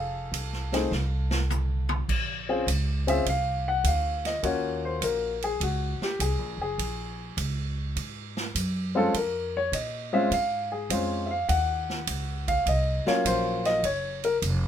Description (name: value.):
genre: jazz piano trio.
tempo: 102 BPM.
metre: 4/4.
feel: swing 68% on 8ths.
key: Bb minor.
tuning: A4 = 441 Hz.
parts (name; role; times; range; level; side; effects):
warm upright piano; melody; 0.0-14.4 s; Gb3 to Gb5; -26 LUFS; left 2 dB; none.
upright bass; bass; 0.0-14.7 s; F1 to Bb2; -30 LUFS; right 1 dB; none.
swinging big-band drum kit; drums; 0.3-14.6 s; crash cymbal, hi-hat, kick drum, ride cymbal, snare drum, toms; -33 LUFS; right 3 dB; none.
room: light reverb.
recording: minimal, uncompressed stereo recording.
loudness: -25 LUFS.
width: side -9 dB against mid.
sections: 0.0-2.1 A section; 2.1-14.7 B section.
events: drum fill 0.9-2.1; upright piano solo 2.1-14.7.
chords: 0.0 F(#9); 2.1 Bbm; 4.4 Ebm7; 6.8 Bbm7; 11.5 Ebm7.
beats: 0.33 0.92 1.50 | 2.09 2.68 3.26 3.85 | 4.44 5.03 5.61 6.20 | 6.79 7.38 7.96 8.55 | 9.14 9.73 10.31 10.90 | 11.49 12.08 12.66 13.25 | 13.84 14.42.